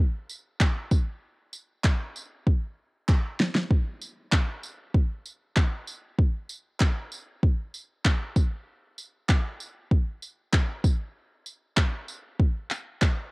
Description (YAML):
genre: pop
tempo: 97 BPM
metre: 4/4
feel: straight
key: none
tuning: none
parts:
  - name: deep house drum kit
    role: drums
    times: 0.3-13.2 s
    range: handclaps, kick drum, snare drum, tambourine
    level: -22 LUFS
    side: equal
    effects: cassette tape
  - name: group handclap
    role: percussion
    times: 0.6-13.2 s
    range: none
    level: -36 LUFS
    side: right 1 dB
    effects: none
room: little or no reverb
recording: home recording on cassette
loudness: -24 LUFS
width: side -28 dB against mid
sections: 0.0-13.3 A section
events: drum fill 2.5-3.7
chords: none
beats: 0.61 | 1.23 1.85 2.47 3.09 | 3.71 4.33 4.95 5.57 | 6.19 6.81 7.43 8.05 | 8.67 9.29 9.91 10.53 | 11.15 11.78 12.40 13.02